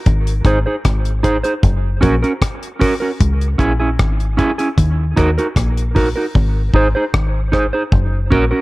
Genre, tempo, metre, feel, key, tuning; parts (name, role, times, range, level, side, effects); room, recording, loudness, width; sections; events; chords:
dub reggae; 76 BPM; 4/4; straight; A4 = 440 Hz
deep dub fingered electric bass; bass; 0.1-8.5 s; F#1 to D#2; -16 LUFS; equal
deep reggae drum kit; drums; 0.1-8.5 s; hi-hat, kick drum, rim click; -16 LUFS; equal
clean electric guitar; accompaniment; 0.5-8.6 s; C#4 to B#4; -18 LUFS; right 2 dB; dub echo
studio reverb; -14 LUFS; side -20 dB against mid
0.0-8.6 A section
hi-hats muted 6.3-8.6
0.1 G#; 1.6 F#; 3.2 C#m; 4.8 D#m; 6.3 G#; 7.9 F#